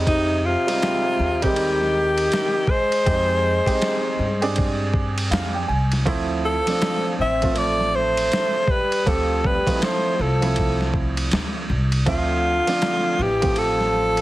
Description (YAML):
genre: hip hop, jazz-hop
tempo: 80 BPM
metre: 4/4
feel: swing 63% on 16ths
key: unclear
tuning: A4 = 442 Hz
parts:
  - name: warm upright piano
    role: accompaniment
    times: 0.0-14.2 s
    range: F3 to Ab5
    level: -26 LUFS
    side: right 3 dB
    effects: none
  - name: upright bass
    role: bass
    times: 0.0-14.2 s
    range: A1 to G2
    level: -24 LUFS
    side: equal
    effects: none
  - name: breathy alto saxophone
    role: melody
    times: 0.1-14.2 s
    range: Eb4 to E5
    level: -21 LUFS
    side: equal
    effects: none
  - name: trombone with cup mute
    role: second line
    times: 0.1-14.2 s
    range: C3 to C4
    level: -28 LUFS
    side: left 3 dB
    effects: slapback echo
  - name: boom bap sampler-style drum kit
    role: drums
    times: 0.1-14.2 s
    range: hi-hat, kick drum, ride cymbal, snare drum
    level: -26 LUFS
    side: equal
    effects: none
room: light reverb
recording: heavily compressed radio sound, multiband compression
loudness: -18 LUFS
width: side -16 dB against mid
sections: 0.0-14.2 A section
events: upright piano fill 4.9-6.1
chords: 0.0 Fm9; 6.1 Dm9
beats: | 0.07 0.81 1.56 2.31 | 3.06 3.81 4.57 5.32 | 6.07 6.82 7.57 8.31 | 9.06 9.81 10.56 11.31 | 12.06 12.81 13.56